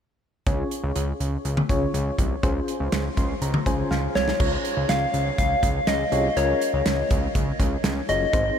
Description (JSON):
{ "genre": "synth-pop", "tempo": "122 BPM", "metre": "4/4", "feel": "straight", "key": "Db major", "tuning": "A4 = 441 Hz", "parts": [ { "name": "FM electric piano with tremolo", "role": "accompaniment", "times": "0.5-8.6 s", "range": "C4 to C6", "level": "-29 LUFS", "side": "left 1 dB", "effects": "none" }, { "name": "fat analog bass", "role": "bass", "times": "0.5-8.5 s", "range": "Gb1 to Db2", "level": "-26 LUFS", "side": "equal", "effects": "none" }, { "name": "modern studio drum kit", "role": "drums", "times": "0.5-8.4 s", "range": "crash cymbal, hi-hat, kick drum, snare drum, toms", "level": "-26 LUFS", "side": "equal", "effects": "none" }, { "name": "soft struck synth lead", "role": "melody", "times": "4.2-8.6 s", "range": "Db5 to F5", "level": "-24 LUFS", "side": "left 2 dB", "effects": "chorus, diffuse ambient delay" } ], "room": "moderate huge ambient reverb, RT60 7.3 s", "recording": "dreamy mix soaked in reverb", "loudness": "-21 LUFS", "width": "side -8 dB against mid", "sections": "0.5-4.4 A section; 4.4-8.6 B section", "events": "FM electric piano fill 2.9-4.4; drum fill 3.9-4.4", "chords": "0.5 Db" }